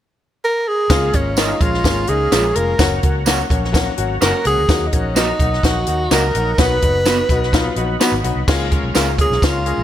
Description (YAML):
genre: uptempo 1960s-style soul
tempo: 127 BPM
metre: 4/4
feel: straight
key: Db mixolydian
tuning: A4 = 439 Hz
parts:
  - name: breathy tenor saxophone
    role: melody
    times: 0.4-9.8 s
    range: Db4 to Cb5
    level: -19 LUFS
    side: right 1 dB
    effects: none
  - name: bright upright piano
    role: accompaniment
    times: 0.9-9.8 s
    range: Gb3 to Ab4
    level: -23 LUFS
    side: left 6 dB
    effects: none
  - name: tonewheel organ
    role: sustained chords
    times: 0.9-9.8 s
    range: Db5 to Cb6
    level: -29 LUFS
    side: equal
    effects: slow rotary speaker, overdrive, chorus vibrato
  - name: vintage muted fingered electric bass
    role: bass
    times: 0.9-9.8 s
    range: F1 to Eb2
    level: -22 LUFS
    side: equal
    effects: none
  - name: compact cocktail drum kit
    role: drums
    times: 0.9-9.8 s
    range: crash cymbal, hi-hat, kick drum, snare drum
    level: -18 LUFS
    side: equal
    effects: none
  - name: tambourine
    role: percussion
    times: 0.9-9.5 s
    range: none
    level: -28 LUFS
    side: right 6 dB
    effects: none
  - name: electric guitar through a small old amp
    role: stabs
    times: 1.4-9.1 s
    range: Ab3 to Cb5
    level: -23 LUFS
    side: right 4 dB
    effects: none
room: light reverb, studio reverb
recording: none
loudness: -14 LUFS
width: side -11 dB against mid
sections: 0.9-8.5 A section; 8.5-9.8 B section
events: none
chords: 0.0 N.C.; 0.9 Db6; 2.8 Gb; 4.7 Ebm; 6.6 Cb; 8.5 Db6